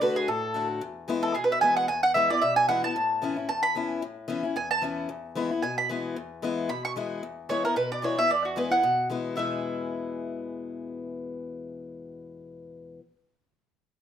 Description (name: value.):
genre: bluegrass.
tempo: 225 BPM.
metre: 4/4.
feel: swing 56% on 8ths.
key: E mixolydian.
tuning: A4 = 442 Hz.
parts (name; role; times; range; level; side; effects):
mandolin; melody; 0.0-13.0 s; F#4 to C#6; -24 LUFS; right 1 dB; none.
picked acoustic archtop guitar; accompaniment; 0.0-13.0 s; E2 to F#4; -31 LUFS; left 4 dB; none.
room: wet studio reverb, RT60 0.6 s.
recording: rough home demo mix.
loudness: -25 LUFS.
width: side -9 dB against mid.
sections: 0.0-7.2 A section; 7.2-9.4 B section; 9.4-11.5 C section.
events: none.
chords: 0.0 D; 0.8 E; 3.0 Aadd9; 5.1 E.